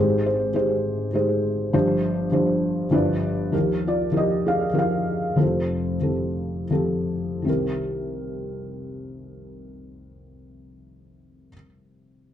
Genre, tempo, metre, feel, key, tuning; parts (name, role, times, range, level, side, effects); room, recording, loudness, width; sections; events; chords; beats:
acoustic folk-pop ballad; 77-101 BPM; 3/4; straight; C minor; A4 = 440 Hz
felt-muted upright piano; solo; 0.0-12.3 s; F1 to F5; -21 LUFS; equal; slapback echo
moderate studio reverb, RT60 0.7 s; dark, warm production; -21 LUFS; side -10 dB against mid
0.0-3.5 A section; 3.5-7.5 B section; 7.5-12.1 C section
slowing down 3.5-7.5
0.0 Abmaj7; 1.7 G7sus4; 2.9 G7; 3.5 Ebadd9; 5.4 Fadd9; 7.5 Cm7
0.55 1.14 | 1.74 2.33 2.93 | 3.52 4.12 4.73 | 5.37 6.03 6.73 | 7.48 8.25 9.03 | 9.81 10.59 11.36